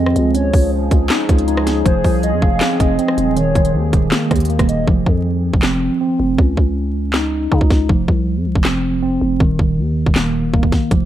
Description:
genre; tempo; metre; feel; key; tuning
hip hop, trap; 159 BPM; 4/4; half-time; F minor; A4 = 440 Hz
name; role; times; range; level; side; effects
hollow clarinet-like synth lead; second line; 0.0-4.9 s; C5 to F5; -23 LUFS; left 1 dB; chorus, slapback echo
deep dark ambient pad; sustained chords; 0.0-4.9 s; Eb3 to Ab4; -25 LUFS; equal; chorus, built-in reverb
mellow tine electric piano; arpeggios; 0.0-11.1 s; Eb3 to Eb4; -18 LUFS; right 1 dB; medium stereo tremolo, slapback echo
growling 808-style bass; bass; 0.0-11.1 s; Eb1 to Db3; -20 LUFS; equal; none
trap drum kit; drums; 0.1-11.0 s; handclaps, hi-hat, kick drum, rim click, snare drum; -16 LUFS; equal; none
room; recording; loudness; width
light reverb; dark, warm production, vinyl crackle; -13 LUFS; side -12 dB against mid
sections
0.0-4.9 A section; 4.9-11.1 B section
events
hi-hats muted 4.9-10.9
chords
0.3 Dbadd9; 1.9 Fm; 3.4 Eb; 4.9 F5; 6.4 Dbsus2; 7.9 F5; 9.4 Eb5

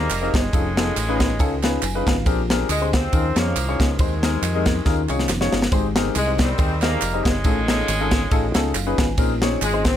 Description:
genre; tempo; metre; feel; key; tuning
uptempo gospel; 139 BPM; 4/4; swing 55% on 8ths; unclear; A4 = 440 Hz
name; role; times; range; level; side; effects
mellow horn section; melody; 0.0-10.0 s; C3 to C4; -26 LUFS; equal; none
warm baby grand piano; accompaniment; 0.0-9.9 s; Ab2 to A5; -24 LUFS; left 4 dB; none
fingered electric bass; bass; 0.0-10.0 s; F1 to F2; -24 LUFS; right 1 dB; none
crisp fusion drum kit; drums; 0.1-9.9 s; kick drum, ride cymbal, snare drum; -21 LUFS; equal; none
handclaps and tambourine; percussion; 0.1-9.9 s; none; -32 LUFS; right 7 dB; none
room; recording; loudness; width
little or no reverb; none; -18 LUFS; side -10 dB against mid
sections
0.0-10.0 A section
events
grand piano fill 1.6-2.3, 8.3-9.2; drum fill 4.9-5.7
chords
0.0 Abmaj7; 0.5 F7alt; 2.3 Bb13; 3.1 Eb9sus4; 4.0 Ab/Eb; 4.9 Eb9sus4; 7.5 F7alt; 9.2 Bbm11

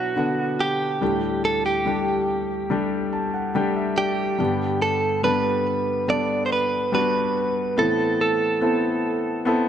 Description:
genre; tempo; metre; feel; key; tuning
pop; 71 BPM; 4/4; straight; G major; A4 = 440 Hz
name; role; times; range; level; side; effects
direct-recorded clean electric guitar; melody; 0.0-9.7 s; F#4 to D5; -23 LUFS; right 3 dB; none
warm concert grand piano; accompaniment; 0.0-9.7 s; D2 to A5; -23 LUFS; left 2 dB; none
room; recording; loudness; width
light reverb; dark, warm production; -20 LUFS; side -9 dB against mid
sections
0.0-4.4 A section; 4.4-9.7 B section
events
grand piano fill 2.7-4.4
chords
0.0 Bm; 1.0 Dsus4; 4.4 G; 7.8 Amadd9

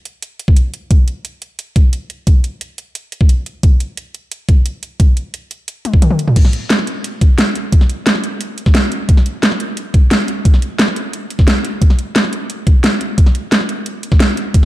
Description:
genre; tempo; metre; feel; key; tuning
drum and bass; 176 BPM; 4/4; straight; none; none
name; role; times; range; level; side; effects
dubstep drum kit; drums; 0.1-14.7 s; crash cymbal, hi-hat, snare drum, toms; -16 LUFS; equal; studio reverb
electronic kick drum; drums; 0.5-14.6 s; none; -9 LUFS; equal; studio reverb
room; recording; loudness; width
light reverb; dark, warm production; -12 LUFS; side -15 dB against mid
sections
0.0-14.7 A section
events
drum fill 5.8-6.4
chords
none

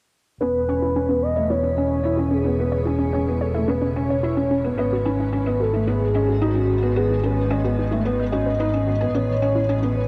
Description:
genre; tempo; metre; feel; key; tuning
piano and strings electronica; 110 BPM; 4/4; straight; E major; A4 = 440 Hz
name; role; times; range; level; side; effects
warm velvety synth lead; melody; 0.4-10.1 s; F#4 to D#5; -27 LUFS; equal; chorus, shimmer reverb
granular cloud pad; sustained chords; 1.7-10.1 s; C#3 to G#4; -38 LUFS; equal; built-in reverb, shimmer reverb
warbly dusty pluck; arpeggios; 0.4-9.9 s; C#4 to G#5; -32 LUFS; equal; chorus, shimmer reverb, digital delay
felt-muted upright piano; riff; 0.4-10.0 s; A3 to E4; -27 LUFS; equal; low-pass filter, shimmer reverb
warm studio double bass section; bass; 0.4-10.1 s; E1 to A1; -26 LUFS; equal; none
room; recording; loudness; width
moderate huge ambient reverb, RT60 3.9 s; none; -21 LUFS; mono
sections
0.4-10.1 A section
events
fade-in on ambient pad 0.4-10.1; filter sweep on felt piano 0.4-10.1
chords
0.4 E6; 4.8 G#m7; 9.1 A

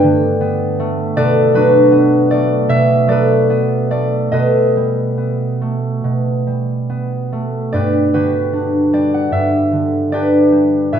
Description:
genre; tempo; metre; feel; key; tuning
classical, solo harp piece; 70-80 BPM; 4/4; rubato; unclear; A4 = 445 Hz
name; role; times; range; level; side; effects
concert harp; solo; 0.0-11.0 s; G2 to G5; -12 LUFS; equal; none
room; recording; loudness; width
moderate recital hall reverb, RT60 1.6 s; minimal, uncompressed stereo recording; -13 LUFS; side -8 dB against mid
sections
0.0-11.0 A section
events
none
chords
0.0 Gadd9; 1.2 Bm7; 4.3 Baug7; 7.7 Gmaj7

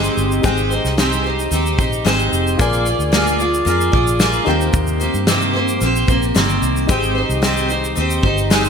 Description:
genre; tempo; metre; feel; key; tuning
acoustic pop; 112 BPM; 4/4; straight; unclear; A4 = 440 Hz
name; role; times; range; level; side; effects
picked steel-string acoustic guitar; accompaniment; 0.0-8.7 s; C3 to D5; -17 LUFS; equal; double-tracked left and right
reed electric piano; accompaniment; 0.0-8.7 s; Eb4 to Ab5; -26 LUFS; left 6 dB; fast tremolo
vintage muted fingered electric bass; bass; 0.0-8.7 s; F1 to G2; -20 LUFS; equal; none
natural country drum kit; drums; 0.0-8.7 s; kick drum, shaker, snare drum; -21 LUFS; equal; none
room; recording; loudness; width
moderate lush hall reverb, RT60 2.2 s; bright 1980s-style digital production; -14 LUFS; side -6 dB against mid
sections
0.0-8.7 A section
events
none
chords
0.0 Abmaj7; 2.6 Bb7; 4.5 Eb6; 6.9 Abmaj7

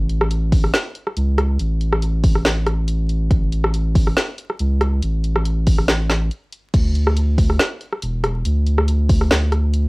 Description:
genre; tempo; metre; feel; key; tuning
deep dubstep; 140 BPM; 4/4; swing 55% on 16ths, half-time; unclear; A4 = 437 Hz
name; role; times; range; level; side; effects
soft dub sub bass; bass; 0.0-9.9 s; E1 to D2; -18 LUFS; equal; none
deep house drum kit; drums; 0.1-9.8 s; crash cymbal, hi-hat, rim click, snare drum; -21 LUFS; equal; small room ambience, cassette tape
electronic kick drum; drums; 0.5-9.2 s; none; -16 LUFS; equal; small room ambience, cassette tape
room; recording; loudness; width
light reverb; home recording on cassette, vinyl crackle; -16 LUFS; side -27 dB against mid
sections
0.0-9.9 A section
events
none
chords
none

